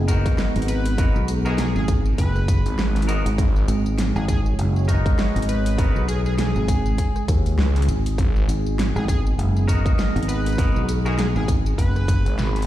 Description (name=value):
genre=glitch hop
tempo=100 BPM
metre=4/4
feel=swing 58% on 16ths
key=G# minor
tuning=A4 = 441 Hz
part: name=warbly tape-like pad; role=sustained chords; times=0.0-12.7 s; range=G#3 to C#5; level=-29 LUFS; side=right 2 dB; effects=chorus, built-in reverb, sidechain pumping
part: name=fingered electric bass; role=bass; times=0.0-12.2 s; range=F#1 to D#2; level=-21 LUFS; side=equal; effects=none
part: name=clean electric guitar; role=stabs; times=0.1-6.0, 9.7-11.2 s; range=B3 to A#4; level=-31 LUFS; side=left 1 dB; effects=vintage 12-bit sampler grit, sidechain pumping, tape echo
part: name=dubstep drum kit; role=drums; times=0.1-12.7 s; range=hi-hat, rim click, snare drum, tambourine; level=-30 LUFS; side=equal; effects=studio reverb
part: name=electronic kick drum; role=drums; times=0.1-12.2 s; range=none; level=-21 LUFS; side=equal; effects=studio reverb
part: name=sync lead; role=melody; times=0.7-12.6 s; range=G#4 to B4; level=-33 LUFS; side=left 1 dB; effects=chorus, tape echo
part: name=phased detuned saw bass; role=bass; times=2.7-3.7, 7.6-8.5, 12.3-12.7 s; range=G#1 to C#2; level=-21 LUFS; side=equal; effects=phaser
room=digital ambience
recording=played on a big sound system in a bare room, large studio reverb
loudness=-18 LUFS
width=side -13 dB against mid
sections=0.0-12.7 A section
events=none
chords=0.0 G#m7